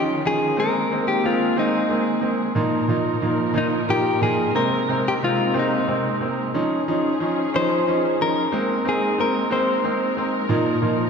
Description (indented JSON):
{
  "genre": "pop",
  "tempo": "61 BPM (dotted quarters)",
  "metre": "6/8",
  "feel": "straight",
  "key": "Ab major",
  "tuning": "A4 = 440 Hz",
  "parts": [
    { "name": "direct-recorded clean electric guitar", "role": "melody", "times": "0.0-10.2 s", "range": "Eb4 to C5", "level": "-23 LUFS", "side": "left 2 dB", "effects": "none" },
    { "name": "bright grand piano", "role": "accompaniment", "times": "0.0-11.1 s", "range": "Bb2 to Eb4", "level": "-22 LUFS", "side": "right 1 dB", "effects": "none" },
    { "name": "muted studio string section", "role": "sustained chords", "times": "0.0-11.1 s", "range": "Bb2 to Bb4", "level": "-27 LUFS", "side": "equal", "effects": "none" }
  ],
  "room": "wet concert hall reverb, RT60 1.8 s",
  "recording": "recorded in a church or concert hall",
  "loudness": "-19 LUFS",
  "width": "side -6 dB against mid",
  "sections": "0.0-11.1 A section",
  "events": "none",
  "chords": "0.0 Dbadd9; 0.6 Abadd9; 2.6 Ebsus2/Bb; 4.6 Abadd9/C; 6.5 Dbadd9; 8.5 Abadd9; 10.5 Ebsus2/Bb"
}